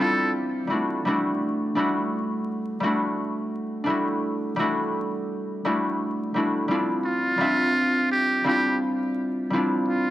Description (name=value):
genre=hip hop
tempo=85 BPM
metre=4/4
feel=swing 61% on 16ths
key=unclear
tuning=A4 = 440 Hz
part: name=trumpet with metal mute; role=melody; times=0.0-0.3, 7.1-10.1 s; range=F4 to A4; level=-25 LUFS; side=right 1 dB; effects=high-pass filter, low-pass filter
part: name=concert harp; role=accompaniment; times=0.0-10.1 s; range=G3 to E5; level=-23 LUFS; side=equal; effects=high-pass filter, low-pass filter
room=studio reverb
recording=dry, gritty hardware recording, vinyl crackle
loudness=-22 LUFS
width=side -14 dB against mid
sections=0.0-10.1 A section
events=none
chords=0.0 Dm11; 0.7 Em11; 6.7 Dm11